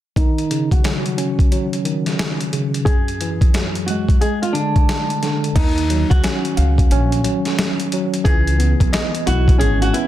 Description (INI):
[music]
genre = hip hop, boom-bap hip-hop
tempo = 89 BPM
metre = 4/4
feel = swing 63% on 16ths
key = Eb minor, Eb phrygian from 5.6 s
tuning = A4 = 441 Hz
[part]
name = flamenco guitar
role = melody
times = 0.2-10.1 s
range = D4 to Ab4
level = -24 LUFS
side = equal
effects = high-pass filter, low-pass filter, tape echo
[part]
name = tine electric piano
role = accompaniment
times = 0.2-10.1 s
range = Gb2 to F5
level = -21 LUFS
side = equal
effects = overdrive, fast stereo tremolo, cassette tape, high-pass filter, low-pass filter
[part]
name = boom bap sampler-style drum kit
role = drums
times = 0.2-10.1 s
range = crash cymbal, hi-hat, kick drum, snare drum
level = -18 LUFS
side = equal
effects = none
[part]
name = upright bass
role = bass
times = 5.6-9.9 s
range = Ab1 to Eb2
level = -17 LUFS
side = equal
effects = none
[sound]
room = little or no reverb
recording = dense, heavily limited modern master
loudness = -15 LUFS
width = side -13 dB against mid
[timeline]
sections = 0.2-5.6 A section; 5.6-10.1 B section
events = filter sweep 0.2-5.6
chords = 0.2 Ebm7; 2.9 Gbsus2; 4.2 D(b5, no3); 5.6 Ebm9; 8.3 Dbm9